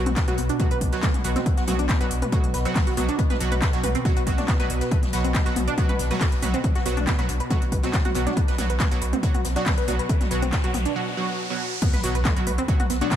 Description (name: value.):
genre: driving peak-time techno.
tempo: 139 BPM.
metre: 4/4.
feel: straight.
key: unclear.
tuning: A4 = 439 Hz.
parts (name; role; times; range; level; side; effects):
supersaw stab; stabs; 0.0-13.1 s; B2 to F#4; -29 LUFS; right 2 dB; wide subtle chorus, sidechain pumping, diffuse ambient delay.
saturated sub bass; bass; 0.0-13.0 s; B1; -27 LUFS; equal; overdrive, sidechain pumping, low-pass filter.
analog drone; drone; 0.0-11.0 s; B2; -33 LUFS; left 1 dB; chorus, phaser, sidechain pumping.
tight sequenced synth; riff; 0.1-13.2 s; A3 to B4; -29 LUFS; equal; chorus, sidechain pumping, diffuse ambient delay.
techno drum kit; drums; 0.1-13.2 s; crash cymbal, handclaps, hi-hat, toms; -30 LUFS; left 1 dB; overdrive.
electronic kick drum; drums; 0.2-13.2 s; none; -22 LUFS; equal; none.
swinging big-band drum kit; drums; 0.2-13.2 s; hi-hat, snare drum; -39 LUFS; left 2 dB; high-pass filter on hats, high-pass filter on snare, high-pass filter on room.
riser and impact; sound effects; 10.0-13.2 s; none; -34 LUFS; equal; none.
room: light reverb.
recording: none.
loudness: -20 LUFS.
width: side -10 dB against mid.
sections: 0.0-11.8 A section; 11.8-13.2 B section.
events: riser 10.0-11.8; break 11.0-11.8; drop 11.8-13.2; impact 11.8-13.2.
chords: 0.0 B5.